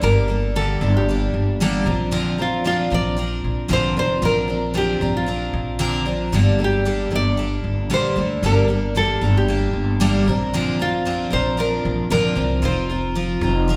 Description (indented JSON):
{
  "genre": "acoustic pop",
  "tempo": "114 BPM",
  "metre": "4/4",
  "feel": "straight",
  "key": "Bb major",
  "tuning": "A4 = 441 Hz",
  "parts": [
    { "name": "nylon-string guitar", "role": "melody", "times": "0.0-13.8 s", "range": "F4 to D5", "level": "-25 LUFS", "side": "equal", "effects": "none" },
    { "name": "picked twelve-string acoustic guitar", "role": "accompaniment", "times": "0.0-13.8 s", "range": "G2 to Bb4", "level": "-24 LUFS", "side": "equal", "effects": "none" },
    { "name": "upright bass", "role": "bass", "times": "0.0-13.8 s", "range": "F1 to D2", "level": "-24 LUFS", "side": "equal", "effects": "none" }
  ],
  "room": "wet recital hall reverb, RT60 1.3 s",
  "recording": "recorded in a church or concert hall",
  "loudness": "-20 LUFS",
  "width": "mono",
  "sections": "0.0-13.8 A section",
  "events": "none",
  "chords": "0.0 Gmadd9; 1.9 Bbadd9; 6.3 Gmadd9; 10.3 Bbadd9; 12.6 Fsus4",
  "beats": "| 0.03 0.55 1.08 1.60 | 2.13 2.65 3.18 3.70 | 4.23 4.75 5.28 5.80 | 6.33 6.86 7.38 7.91 | 8.43 8.96 9.48 10.01 | 10.53 11.06 11.58 12.11 | 12.63 13.16 13.68"
}